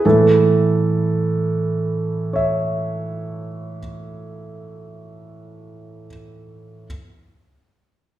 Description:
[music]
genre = classical-period piano sonatina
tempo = 52 BPM (dotted quarters)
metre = 6/8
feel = rubato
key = A major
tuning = A4 = 440 Hz
[part]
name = clear grand piano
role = solo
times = 0.0-6.9 s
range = A2 to E5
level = -18 LUFS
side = right 2 dB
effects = none
[sound]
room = wet recital hall reverb, RT60 1.3 s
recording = heard from further back in the room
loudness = -16 LUFS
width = side -13 dB against mid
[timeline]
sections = 0.0-4.6 A section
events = none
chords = 0.0 A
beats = | 0.04 1.18 | 2.33 3.48

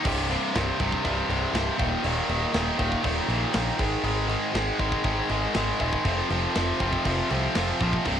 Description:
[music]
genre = heavy metal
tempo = 120 BPM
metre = 4/4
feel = straight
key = C minor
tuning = A4 = 440 Hz
[part]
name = heavy high-gain guitar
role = riff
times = 0.0-8.2 s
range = C2 to Ab3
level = -25 LUFS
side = equal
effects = distortion
[part]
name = tight metal drum kit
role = drums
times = 0.0-8.2 s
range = crash cymbal, kick drum, snare drum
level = -31 LUFS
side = equal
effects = cassette tape
[part]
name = growling picked electric bass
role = bass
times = 0.1-8.2 s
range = C1 to C2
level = -29 LUFS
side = equal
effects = overdrive
[sound]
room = light reverb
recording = home recording on cassette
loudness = -23 LUFS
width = side -9 dB against mid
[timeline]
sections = 0.0-8.2 A section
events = none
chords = 0.0 C5; 1.8 Eb5; 3.8 Ab5; 6.1 F5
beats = | 0.05 0.55 1.05 1.55 | 2.05 2.55 3.05 3.55 | 4.05 4.55 5.05 5.55 | 6.05 6.55 7.06 7.56 | 8.06

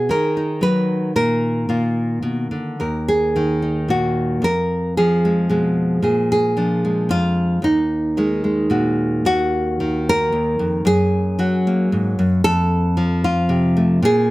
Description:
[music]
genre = folk, solo fingerstyle acoustic guitar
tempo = 112 BPM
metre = 3/4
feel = straight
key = Eb harmonic minor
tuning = A4 = 440 Hz
[part]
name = nylon-string guitar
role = solo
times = 0.0-14.3 s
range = Eb2 to B4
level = -16 LUFS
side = equal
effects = none
[sound]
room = moderate studio reverb, RT60 0.5 s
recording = none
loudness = -16 LUFS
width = side -18 dB against mid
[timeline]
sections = 0.0-9.3 A section; 9.3-14.3 B section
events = none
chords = 0.0 B; 1.2 Eb5/Bb; 1.7 Bb; 2.8 Ebm; 4.4 Fdim; 6.0 Bb7; 7.6 Ebm; 10.9 Gb; 12.4 F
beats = 0.10 0.63 | 1.17 1.70 2.25 | 2.80 3.35 3.89 | 4.43 4.97 5.50 | 6.03 6.56 7.09 | 7.63 8.17 8.71 | 9.25 9.79 10.33 | 10.86 11.38 11.91 | 12.44 12.97 13.50 | 14.03

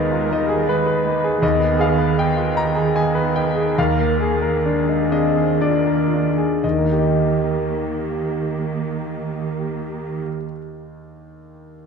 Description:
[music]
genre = classical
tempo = 56-82 BPM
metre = 3/4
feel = rubato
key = Eb major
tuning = A4 = 440 Hz
[part]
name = bright grand piano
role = melody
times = 0.0-11.9 s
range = Eb2 to Bb5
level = -19 LUFS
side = left 2 dB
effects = none
[part]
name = muted chamber viola section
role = accompaniment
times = 0.0-10.2 s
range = G3 to Cb5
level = -27 LUFS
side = right 3 dB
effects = none
[part]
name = muted studio cello section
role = bass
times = 0.0-10.2 s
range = Eb3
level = -24 LUFS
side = right 7 dB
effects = none
[sound]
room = wet scoring stage reverb, RT60 1.9 s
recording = dark, warm production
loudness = -17 LUFS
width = side -6 dB against mid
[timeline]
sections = 0.0-6.6 A section; 6.6-9.7 B section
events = slowing down 0.3-6.6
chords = 0.0 Abm/Eb; 3.8 Bb7/Eb; 6.6 Eb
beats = 0.69 | 1.42 2.18 2.96 | 3.77 4.65 5.60 | 6.63 7.62 8.63

